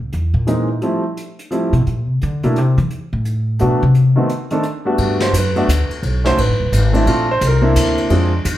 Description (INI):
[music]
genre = jazz piano trio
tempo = 173 BPM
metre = 3/4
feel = swing 63% on 8ths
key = unclear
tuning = A4 = 440 Hz
[part]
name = upright bass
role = bass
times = 0.0-8.6 s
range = D#1 to E3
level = -16 LUFS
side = equal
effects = none
[part]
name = jazz brush drum kit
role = drums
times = 0.1-8.6 s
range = hi-hat, kick drum, ride cymbal, snare drum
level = -25 LUFS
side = left 2 dB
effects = none
[part]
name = warm concert grand piano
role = melody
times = 0.5-8.3 s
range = D#3 to C5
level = -18 LUFS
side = right 1 dB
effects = none
[sound]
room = moderate large studio reverb, RT60 0.9 s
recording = heard from further back in the room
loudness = -14 LUFS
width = side -13 dB against mid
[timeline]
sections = 0.0-5.0 A section; 5.0-8.6 A section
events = upright bass solo 0.0-5.0; grand piano solo 5.0-8.6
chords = 0.0 C7alt; 0.8 Fmaj9; 1.9 F#aug (rootless); 2.9 B7(no3); 3.9 B7b9 (rootless); 4.6 D; 5.0 Gmaj9; 6.0 B7; 7.1 Bb